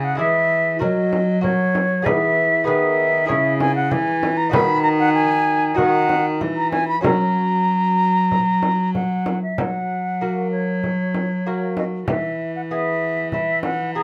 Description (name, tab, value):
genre	classical, renaissance-style consort dance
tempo	96 BPM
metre	4/4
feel	straight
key	unclear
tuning	A4 = 437 Hz
part	mellow silver concert flute	melody	0.0-14.0 s	C#5 to B5	-23 LUFS	equal	none
part	lute	accompaniment	0.0-14.0 s	C#3 to C#5	-27 LUFS	equal	none
part	rich cello	bass	0.0-14.0 s	C#3 to F#3	-25 LUFS	equal	none
part	frame drum	percussion	0.8-13.9 s	none	-27 LUFS	equal	none
room	light reverb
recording	none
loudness	-19 LUFS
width	mono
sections	0.0-9.6 A section; 9.6-14.0 B section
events	none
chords	0.0 C#m; 0.8 F#; 2.1 E; 3.3 C#m; 4.5 B/D#; 5.8 D#m; 7.0 F#; 12.1 E